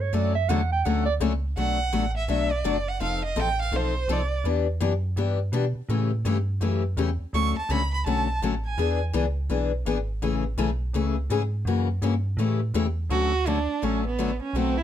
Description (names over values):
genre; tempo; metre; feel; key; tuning
acoustic string swing (jazz manouche); 166 BPM; 4/4; swing 62% on 8ths; unclear; A4 = 440 Hz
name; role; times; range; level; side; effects
breathy clarinet; second line; 0.0-1.1 s; C#5 to G5; -26 LUFS; right 8 dB; none
metallic FM bass; bass; 0.0-14.8 s; F1 to B2; -26 LUFS; right 1 dB; none
picked steel-string acoustic guitar; accompaniment; 0.1-14.8 s; B2 to A4; -27 LUFS; left 7 dB; none
warm violin; melody; 1.6-4.4, 7.4-9.0, 13.1-14.8 s; B3 to C#6; -28 LUFS; right 5 dB; slapback echo
room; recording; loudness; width
light reverb; close, detailed microphones; -23 LUFS; side -10 dB against mid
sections
0.0-1.6 A section; 1.6-13.1 B section; 13.1-14.8 C section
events
clarinet solo 0.0-1.6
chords
0.0 Dmaj7; 1.6 Bm7; 3.0 F7; 4.4 Em7; 5.9 A7; 7.3 Dmaj7; 8.8 E7; 10.2 Amaj7; 11.7 F#7; 12.4 A7; 13.1 Dmaj7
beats
| 0.13 0.48 0.84 1.20 | 1.56 1.92 2.28 2.64 | 3.00 3.37 3.73 4.08 | 4.45 4.81 5.17 5.53 | 5.89 6.25 6.61 6.97 | 7.33 7.69 8.05 8.41 | 8.77 9.13 9.49 9.85 | 10.21 10.57 10.94 11.29 | 11.66 12.02 12.38 12.74 | 13.10 13.46 13.82 14.18 | 14.54